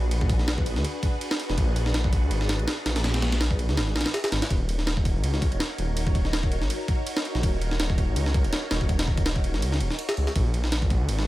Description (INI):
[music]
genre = drum and bass, jungle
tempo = 164 BPM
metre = 4/4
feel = swing 55% on 16ths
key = Eb minor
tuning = A4 = 440 Hz
[part]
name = soft string machine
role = sustained chords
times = 0.0-11.3 s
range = D4 to Db5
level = -34 LUFS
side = equal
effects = phaser, ensemble chorus
[part]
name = detuned saw bass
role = bass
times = 0.0-11.3 s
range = Eb1 to D2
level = -26 LUFS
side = equal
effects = none
[part]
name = breakbeat sampler-style drum kit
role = drums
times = 0.1-11.3 s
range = kick drum, ride cymbal, snare drum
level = -26 LUFS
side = equal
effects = none
[sound]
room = little or no reverb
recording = none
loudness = -23 LUFS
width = side -16 dB against mid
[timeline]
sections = 0.0-11.3 A section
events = none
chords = 0.0 Bb7b9b13; 4.5 Ebm7; 10.4 Bb7b9b13